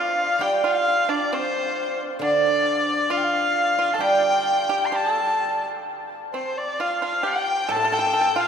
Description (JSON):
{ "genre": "chinese traditional, Chinese chamber ensemble", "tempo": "66 BPM", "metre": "2/4", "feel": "rubato", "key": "D yu mode", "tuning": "A4 = 441 Hz", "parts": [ { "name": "clear erhu", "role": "melody", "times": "0.0-8.5 s", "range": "C5 to C6", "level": "-23 LUFS", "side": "left 1 dB", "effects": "none" }, { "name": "hollow dizi", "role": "second line", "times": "0.0-8.5 s", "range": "C5 to A5", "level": "-27 LUFS", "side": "left 2 dB", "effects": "none" }, { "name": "pipa", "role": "second line", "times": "0.0-8.5 s", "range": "C4 to A4", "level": "-29 LUFS", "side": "right 3 dB", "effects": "none" }, { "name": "guzheng", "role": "accompaniment", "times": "0.4-8.5 s", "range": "A2 to G3", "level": "-26 LUFS", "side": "right 3 dB", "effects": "none" } ], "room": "wet cathedral reverb, RT60 6.7 s", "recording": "recorded in a church or concert hall", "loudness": "-20 LUFS", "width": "side -7 dB against mid", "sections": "0.0-8.5 A section", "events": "none", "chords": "none" }